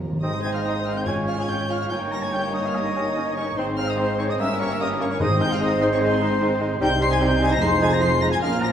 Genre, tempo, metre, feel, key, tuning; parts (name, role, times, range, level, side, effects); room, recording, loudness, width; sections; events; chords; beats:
quick classical-period movement for symphony orchestra; 147 BPM; 4/4; rubato; Ab major; A4 = 440 Hz
warm chamber violin section; melody; 0.0-8.7 s; Bb4 to C7; -32 LUFS; left 3 dB
dark chamber double bass section; bass; 0.0-8.7 s; F1 to F2; -30 LUFS; right 2 dB
dark studio cello section; bass; 0.0-8.7 s; F2 to F3; -29 LUFS; right 2 dB
timpani; percussion; 0.0-1.7, 5.2-5.8 s; Ab2 to Eb3; -29 LUFS; left 1 dB
clear oboe; second line; 0.2-8.7 s; C5 to C6; -30 LUFS; right 1 dB
mellow small flute group; second line; 0.2-8.7 s; C5 to C6; -30 LUFS; left 4 dB
warm chamber violin section; second line; 0.2-8.7 s; Ab3 to Eb5; -31 LUFS; equal
warm clarinet; second line; 0.2-8.7 s; Db4 to F4; -33 LUFS; equal
clear bassoon; accompaniment; 0.2-8.7 s; F3 to Db4; -30 LUFS; equal
dark studio viola section; accompaniment; 0.2-8.7 s; Ab3 to F4; -30 LUFS; right 3 dB
dark French horn section; sustained chords; 0.2-8.7 s; F3 to F4; -30 LUFS; left 2 dB
warm trumpet; stabs; 0.2-8.7 s; Bb4 to Db5; -29 LUFS; right 1 dB
wet recital hall reverb, RT60 1.4 s; heard from further back in the room; -20 LUFS; side -9 dB against mid
0.2-8.7 A section
timpani fill 0.0
0.2 Ab; 1.1 Db/Ab; 1.9 Eb7/G; 3.6 Ab; 4.4 Gdim7; 5.2 Ab; 6.8 Cm; 7.6 Fm7
| 0.23 0.65 1.06 1.49 | 1.91 2.33 2.75 3.16 | 3.57 3.98 4.39 4.80 | 5.20 5.61 6.01 6.42 | 6.82 7.22 7.62 8.02 | 8.43